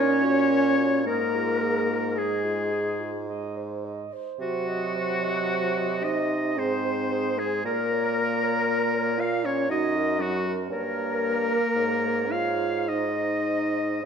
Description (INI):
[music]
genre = classical, slow romantic movement for wind quintet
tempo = 51-60 BPM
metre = 3/4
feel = rubato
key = unclear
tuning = A4 = 439 Hz
[part]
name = silver concert flute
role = melody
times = 0.0-14.1 s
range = Gb4 to F5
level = -31 LUFS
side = left 6 dB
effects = none
[part]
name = bright oboe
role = second line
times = 0.0-14.0 s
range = Gb4 to F5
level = -29 LUFS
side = equal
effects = none
[part]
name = dark clarinet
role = accompaniment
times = 0.0-14.0 s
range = F4 to Eb5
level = -33 LUFS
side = right 9 dB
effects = none
[part]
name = warm French horn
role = accompaniment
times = 0.0-14.0 s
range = Gb3 to F4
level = -27 LUFS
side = equal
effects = none
[part]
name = warm bassoon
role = bass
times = 0.0-14.1 s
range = Gb2 to C3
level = -31 LUFS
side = right 2 dB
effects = none
[sound]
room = wet recital hall reverb, RT60 1.5 s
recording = none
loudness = -23 LUFS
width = side -7 dB against mid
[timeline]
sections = 0.0-14.1 A section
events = none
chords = 0.0 Gb/Bb; 1.1 Fmadd11/Ab; 3.3 Ab; 4.4 Cdim; 6.6 Ab; 7.6 Bbm; 9.7 Ebm/Gb; 10.7 Gdim; 11.8 Db/Ab; 12.9 Ab